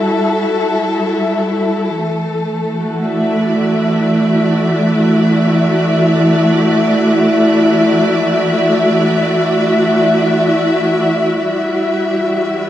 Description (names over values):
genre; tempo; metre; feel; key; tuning
ambient; free time; none; none; unclear; A4 = 440 Hz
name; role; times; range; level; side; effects
warm symphonic string section; sustained chords; 0.0-12.7 s; E3 to E5; -12 LUFS; equal; none
organ-like drone; drone; 12.1-12.7 s; E3 to E4; -38 LUFS; left 1 dB; none
room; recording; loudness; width
wet spring reverb, RT60 2.3 s; cassette tape; -12 LUFS; side -12 dB against mid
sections
0.0-11.4 A section; 11.4-12.7 B section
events
none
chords
0.0 Emadd9; 2.0 Dadd9/E; 11.4 Emadd9